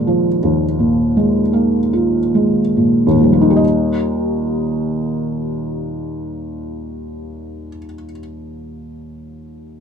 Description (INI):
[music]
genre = classical, romantic nocturne for solo piano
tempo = 34-43 BPM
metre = 4/4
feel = rubato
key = Eb major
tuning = A4 = 439 Hz
[part]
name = felt-muted upright piano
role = solo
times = 0.0-9.8 s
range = Eb2 to Eb5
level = -16 LUFS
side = equal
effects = none
[sound]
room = little or no reverb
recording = close, detailed microphones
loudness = -14 LUFS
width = side -7 dB against mid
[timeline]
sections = 0.0-3.6 A section; 3.6-9.6 B section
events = slowing down 0.0-3.6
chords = 0.0 Bb7/Eb; 3.6 Eb